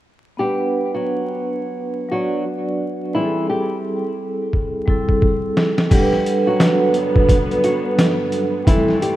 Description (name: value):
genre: hip hop, boom-bap hip-hop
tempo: 87 BPM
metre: 4/4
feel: swing 61% on 16ths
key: G major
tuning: A4 = 438 Hz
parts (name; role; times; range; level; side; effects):
- nylon-string guitar; melody; 0.4-9.2 s; E3 to G4; -24 LUFS; left 1 dB; high-pass filter, low-pass filter, tape echo
- vibraphone with medium mallets; accompaniment; 0.4-9.2 s; F#3 to F#5; -19 LUFS; right 1 dB; high-pass filter, low-pass filter
- trip hop sampler-style drum kit; drums; 4.5-9.2 s; crash cymbal, hi-hat, kick drum, snare drum; -17 LUFS; equal; none
- rich studio string section; sustained chords; 5.9-9.2 s; G2 to B3; -26 LUFS; left 1 dB; high-pass filter, low-pass filter
room: moderate lush hall reverb, RT60 2.3 s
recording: rough home demo mix, vinyl crackle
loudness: -16 LUFS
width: side -14 dB against mid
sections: 0.4-5.9 A section; 5.9-9.2 B section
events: drum fill 4.5-5.9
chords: 0.4 Gmaj7; 3.2 C6; 5.9 Gmaj7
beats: | 0.40 1.08 1.77 2.46 | 3.15 3.84 4.53 5.22 | 5.91 6.60 7.29 7.98 | 8.67